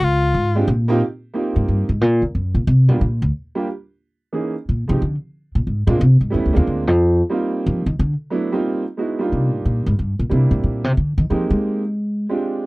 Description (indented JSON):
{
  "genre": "jazz, small-group swing and bop",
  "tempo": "181 BPM",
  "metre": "3/4",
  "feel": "swing 65% on 8ths",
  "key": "Eb major, C minor from 9.0 s",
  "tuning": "A4 = 439 Hz",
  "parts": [
    { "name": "clear tenor saxophone", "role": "melody", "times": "0.0-0.6 s", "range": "F4", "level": "-19 LUFS", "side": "left 2 dB", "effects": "none" },
    { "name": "upright bass", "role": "bass", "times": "0.0-12.3 s", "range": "Db2 to Ab3", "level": "-16 LUFS", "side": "equal", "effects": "none" },
    { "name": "clear upright piano", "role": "accompaniment", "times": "0.6-12.7 s", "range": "Fb3 to Ab4", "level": "-21 LUFS", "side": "right 2 dB", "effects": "none" }
  ],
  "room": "little or no reverb",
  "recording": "dry, close 1970s-style studio recording",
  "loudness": "-17 LUFS",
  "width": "side -22 dB against mid",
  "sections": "0.0-1.0 A section; 1.0-9.0 A section; 9.0-12.7 A section",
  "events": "tenor saxophone solo 0.0-1.0; upright bass solo 1.0-12.7",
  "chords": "0.0 Db; 0.7 Bbsus2; 1.0 Eb69; 2.0 Eb6 (rootless); 3.0 Gm7; 4.0 Bbm11; 5.0 Fm; 6.0 Bb7; 7.0 Eb69; 9.0 Cm11; 10.0 C7; 11.0 Fm11; 12.0 Abmaj7#11"
}